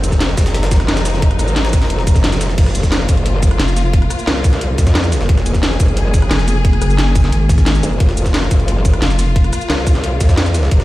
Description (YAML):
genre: dark technical drum and bass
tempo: 177 BPM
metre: 4/4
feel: straight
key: F phrygian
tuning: A4 = 440 Hz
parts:
  - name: warm studio string section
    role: sustained chords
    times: 0.0-10.8 s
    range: F3 to Ab4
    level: -23 LUFS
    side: left 2 dB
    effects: vintage 12-bit sampler grit, sidechain pumping
  - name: growl bass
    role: bass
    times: 0.0-10.8 s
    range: F1 to F2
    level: -17 LUFS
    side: equal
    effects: chorus
  - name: drum and bass drum kit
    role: drums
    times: 0.0-10.8 s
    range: cabasa, crash cymbal, hi-hat, rim click, snare drum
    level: -21 LUFS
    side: equal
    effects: none
  - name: jungle sampler-style drum kit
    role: drums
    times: 0.0-10.8 s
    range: hi-hat, snare drum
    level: -29 LUFS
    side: equal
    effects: high-pass filter on hats, high-pass filter on snare
  - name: electronic kick drum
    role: drums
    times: 0.1-10.8 s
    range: none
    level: -13 LUFS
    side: equal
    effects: none
  - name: vowel-sweep wobble bass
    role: bass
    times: 3.6-4.1, 6.3-9.5 s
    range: F1 to Ab1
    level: -14 LUFS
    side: equal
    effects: chorus
room: digital ambience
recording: played on a big sound system in a bare room, stone room reverb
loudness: -12 LUFS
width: side -17 dB against mid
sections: 0.0-10.8 A section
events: none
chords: 0.0 Fm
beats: 0.21 0.55 0.88 | 1.22 1.56 1.90 2.24 | 2.58 2.92 3.26 3.60 | 3.94 4.27 4.61 4.95 | 5.29 5.63 5.97 6.31 | 6.65 6.99 7.33 7.66 | 8.00 8.34 8.68 9.02 | 9.36 9.70 10.04 10.38 | 10.71